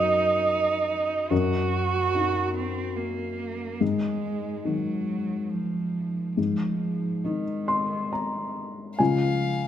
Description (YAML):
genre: neoclassical piano and strings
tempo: 70 BPM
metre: 3/4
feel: uneven beats, rubato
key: unclear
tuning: A4 = 440 Hz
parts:
  - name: dark cello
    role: second line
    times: 0.0-9.7 s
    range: Eb3 to Gb4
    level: -27 LUFS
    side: right 4 dB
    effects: none
  - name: felt-muted upright piano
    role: accompaniment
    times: 0.0-9.7 s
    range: Db2 to C6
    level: -26 LUFS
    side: left 3 dB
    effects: none
  - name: warm violin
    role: melody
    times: 9.0-9.7 s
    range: F5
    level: -31 LUFS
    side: left 7 dB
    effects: none
room: wet recital hall reverb, RT60 1.7 s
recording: recorded in a church or concert hall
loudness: -24 LUFS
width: side -10 dB against mid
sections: 0.0-9.0 A section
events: none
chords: 0.0 Ebm/Gb; 3.8 Ab5; 9.0 Db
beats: 0.47 | 1.31 2.15 2.98 | 3.81 4.65 5.50 | 6.37 7.25 8.12 | 8.99